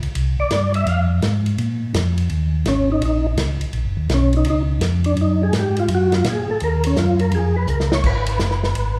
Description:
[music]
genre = soul jazz organ trio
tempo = 167 BPM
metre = 4/4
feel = swing 65% on 8ths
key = Eb minor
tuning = A4 = 439 Hz
[part]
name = mellow tonewheel organ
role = bass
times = 0.0-9.0 s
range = Gb1 to Bb2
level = -21 LUFS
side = equal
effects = chorus vibrato, slow rotary speaker
[part]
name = warm soul drum kit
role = drums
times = 0.0-8.9 s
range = crash cymbal, hi-hat, kick drum, ride cymbal, snare drum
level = -28 LUFS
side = equal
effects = none
[part]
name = percussive tonewheel organ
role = melody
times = 0.4-9.0 s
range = Db4 to F5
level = -24 LUFS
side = equal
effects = chorus vibrato, fast rotary speaker
[sound]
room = wet large studio reverb, RT60 1.4 s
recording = heard from further back in the room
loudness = -19 LUFS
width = mono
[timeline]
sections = 0.0-2.3 A section; 2.3-9.0 A section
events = tonewheel organ solo 0.0-2.3, 2.3-9.0; drum fill 7.7-8.0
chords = 0.1 C5; 0.9 Fm; 1.6 Bb5; 2.3 Ebm9; 8.0 Abm7

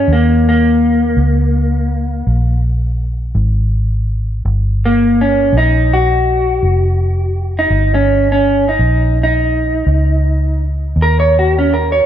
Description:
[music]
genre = slow blues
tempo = 55 BPM (dotted quarters)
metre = 12/8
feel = straight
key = Eb mixolydian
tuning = A4 = 445 Hz
[part]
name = electric guitar through a small old amp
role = melody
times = 0.0-12.1 s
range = Bb3 to Db5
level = -14 LUFS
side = equal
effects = spring reverb
[part]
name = vintage muted fingered electric bass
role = bass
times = 0.0-12.0 s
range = F1 to Eb2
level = -14 LUFS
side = equal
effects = none
[sound]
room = digital ambience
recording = nothing above 7.5 kHz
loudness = -11 LUFS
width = side -10 dB against mid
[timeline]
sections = 0.0-12.1 A section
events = clean electric guitar solo 0.0-12.1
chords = 0.0 Eb9

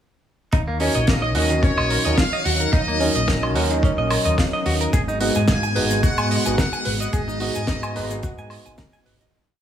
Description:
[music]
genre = nu-disco, nu disco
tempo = 109 BPM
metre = 4/4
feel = swing 54% on 16ths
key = Eb minor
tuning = A4 = 440 Hz
[part]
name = string machine, full ensemble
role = sustained chords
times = 0.5-9.3 s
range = Gb3 to Eb5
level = -28 LUFS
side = equal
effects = phaser, ensemble chorus, sidechain pumping
[part]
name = direct-recorded clean electric guitar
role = riff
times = 0.5-9.3 s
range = Eb3 to Ab5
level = -27 LUFS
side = right 1 dB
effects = lush chorus, vintage 12-bit sampler grit, tape echo
[part]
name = picked electric bass with an envelope filter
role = bass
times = 0.5-9.3 s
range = Ab1 to Ab2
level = -25 LUFS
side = equal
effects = sidechain pumping
[part]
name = damped 70s drum kit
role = drums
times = 0.5-9.3 s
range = hi-hat, snare drum, woodblock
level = -25 LUFS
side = right 1 dB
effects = none
[part]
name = electronic kick drum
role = drums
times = 0.5-8.9 s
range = none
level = -21 LUFS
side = equal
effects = none
[part]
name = muted trumpet section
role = melody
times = 0.8-8.2 s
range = Db5 to Ab5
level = -26 LUFS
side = left 2 dB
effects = tape echo
[part]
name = overdriven tine electric piano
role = accompaniment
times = 0.8-9.3 s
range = Gb3 to F5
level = -25 LUFS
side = right 1 dB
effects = sidechain pumping, tape echo
[part]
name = cabasa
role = percussion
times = 4.9-9.3 s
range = none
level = -39 LUFS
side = left 7 dB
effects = none
[sound]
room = light reverb, studio ambience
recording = small room ambience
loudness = -18 LUFS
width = side -10 dB against mid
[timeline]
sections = 0.5-9.3 drop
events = drop 0.5-9.3; fade-out 6.4-9.3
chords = 0.5 Ebm7; 4.9 Abm7

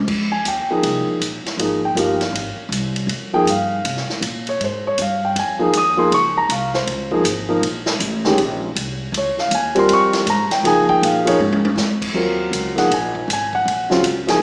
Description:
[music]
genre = modal jazz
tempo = 159 BPM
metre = 4/4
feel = swing 64% on 8ths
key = F minor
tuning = A4 = 440 Hz
[part]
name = upright bass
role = bass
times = 0.0-14.4 s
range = G1 to Db3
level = -30 LUFS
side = equal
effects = none
[part]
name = swinging big-band drum kit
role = drums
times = 0.1-14.3 s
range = crash cymbal, hi-hat, kick drum, ride cymbal, snare drum, toms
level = -26 LUFS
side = equal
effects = none
[part]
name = warm grand piano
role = accompaniment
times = 0.3-14.4 s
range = Db3 to Eb6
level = -20 LUFS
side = equal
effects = none
[sound]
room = wet recital hall reverb, RT60 1.6 s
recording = recorded in a church or concert hall, small speaker sound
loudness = -19 LUFS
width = mono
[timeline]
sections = 0.1-12.2 A section; 12.2-14.4 A section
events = drum fill 11.4-11.8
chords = 0.1 Fm9; 6.1 Bbm9; 12.2 Ebm11

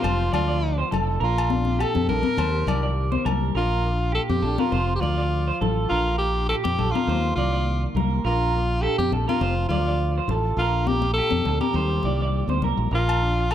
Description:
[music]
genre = highlife guitar band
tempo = 102 BPM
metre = 4/4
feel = swing 54% on 16ths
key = Bb major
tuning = A4 = 441 Hz
[part]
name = edgy alto saxophone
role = melody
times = 0.0-13.5 s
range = F4 to Bb4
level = -26 LUFS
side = left 1 dB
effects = tape echo
[part]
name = mellow electric guitar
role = accompaniment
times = 0.0-13.5 s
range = Bb2 to A4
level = -31 LUFS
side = left 4 dB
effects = ensemble chorus
[part]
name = electric guitar through a small old amp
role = arpeggios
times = 0.0-13.5 s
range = G4 to D5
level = -28 LUFS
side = right 6 dB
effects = lush chorus, tape echo
[part]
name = fingered electric bass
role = bass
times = 0.0-13.5 s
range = F1 to F2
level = -24 LUFS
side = right 1 dB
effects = none
[part]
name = agogo bells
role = percussion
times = 0.0-3.4, 13.1-13.5 s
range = none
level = -32 LUFS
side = left 9 dB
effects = none
[part]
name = congas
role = percussion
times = 0.0-12.8 s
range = none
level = -28 LUFS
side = left 9 dB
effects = none
[sound]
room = light reverb, small room ambience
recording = none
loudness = -20 LUFS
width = side -10 dB against mid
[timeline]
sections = 0.0-3.6 A section; 3.6-13.5 A section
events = none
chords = 0.0 F; 1.2 Bb; 2.4 Ebadd9; 3.6 Bb; 4.7 F; 5.9 Bb; 7.1 Ebadd9; 8.2 Bb; 9.4 F; 10.6 Bb; 11.8 Ebadd9; 12.9 Bb

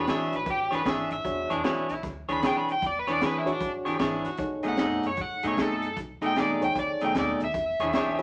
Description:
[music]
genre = electric blues shuffle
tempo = 153 BPM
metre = 4/4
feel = swing 64% on 8ths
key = E mixolydian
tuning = A4 = 436 Hz
[part]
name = overdriven slide guitar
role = melody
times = 0.0-8.2 s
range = D4 to B5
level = -31 LUFS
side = equal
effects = none
[part]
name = reed electric piano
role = accompaniment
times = 0.0-8.2 s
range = D4 to C#5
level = -36 LUFS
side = equal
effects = fast tremolo
[part]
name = clean electric guitar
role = riff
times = 0.0-8.2 s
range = B2 to C#5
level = -31 LUFS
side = equal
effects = none
[part]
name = upright bass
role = bass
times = 0.0-8.2 s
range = E1 to A2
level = -46 LUFS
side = equal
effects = none
[part]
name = crunchy breakbeat drum kit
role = drums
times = 0.1-8.2 s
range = hi-hat, kick drum, snare drum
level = -34 LUFS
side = equal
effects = none
[part]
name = mellow harmonica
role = second line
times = 1.5-4.5, 7.9-8.2 s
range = D4 to B4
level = -39 LUFS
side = equal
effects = overdrive
[sound]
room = wet studio reverb, RT60 0.7 s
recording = nothing above 10.4 kHz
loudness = -28 LUFS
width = mono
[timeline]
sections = 0.0-8.2 A section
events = none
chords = 0.0 E13; 4.4 B13; 7.5 E13

